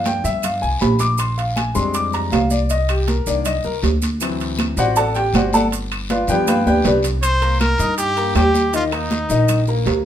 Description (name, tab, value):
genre	latin, salsa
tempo	159 BPM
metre	4/4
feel	straight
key	C minor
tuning	A4 = 440 Hz
part	clear grand piano	accompaniment	0.0-10.0 s	D3 to Eb6	-20 LUFS	left 2 dB	none
part	upright bass	bass	0.0-10.1 s	G1 to G2	-21 LUFS	equal	none
part	guiro	percussion	0.0-10.1 s	none	-33 LUFS	left 5 dB	none
part	congas	percussion	0.1-10.1 s	none	-23 LUFS	right 1 dB	none
part	maracas	percussion	0.1-10.1 s	none	-32 LUFS	right 5 dB	none
part	timbales	percussion	0.1-10.1 s	none	-25 LUFS	right 7 dB	none
part	claves	percussion	0.4-9.7 s	none	-34 LUFS	left 6 dB	none
part	clear trumpet	melody	7.2-9.6 s	Eb4 to C5	-20 LUFS	equal	none
room	wet studio reverb, RT60 0.8 s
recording	minimal, uncompressed stereo recording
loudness	-16 LUFS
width	side -10 dB against mid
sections	0.0-7.2 A section; 7.2-10.1 B section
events	grand piano solo 0.0-7.2; drum fill 6.5-7.2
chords	0.0 G7; 1.2 Bb13; 2.7 Cm7; 4.2 D7; 5.7 G7; 7.2 Cm7; 8.7 Eb5